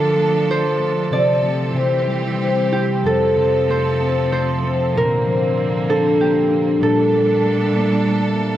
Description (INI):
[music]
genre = children's music, lullaby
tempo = 96 BPM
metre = 3/4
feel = rubato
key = F major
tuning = A4 = 441 Hz
[part]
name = concert harp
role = melody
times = 0.0-8.6 s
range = G4 to D5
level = -19 LUFS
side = right 2 dB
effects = none
[part]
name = concert harp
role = accompaniment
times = 0.0-8.6 s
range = F2 to F4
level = -19 LUFS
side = left 3 dB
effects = none
[part]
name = rich studio string section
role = sustained chords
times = 0.0-8.6 s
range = Bb2 to A4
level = -23 LUFS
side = right 4 dB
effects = none
[sound]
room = little or no reverb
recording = dry, close 1970s-style studio recording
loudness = -15 LUFS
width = side -12 dB against mid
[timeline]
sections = 0.0-8.6 A section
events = none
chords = 0.0 Dm; 1.1 F/C; 1.7 C; 3.0 F; 5.0 Bbadd9; 6.8 Gmadd9/Bb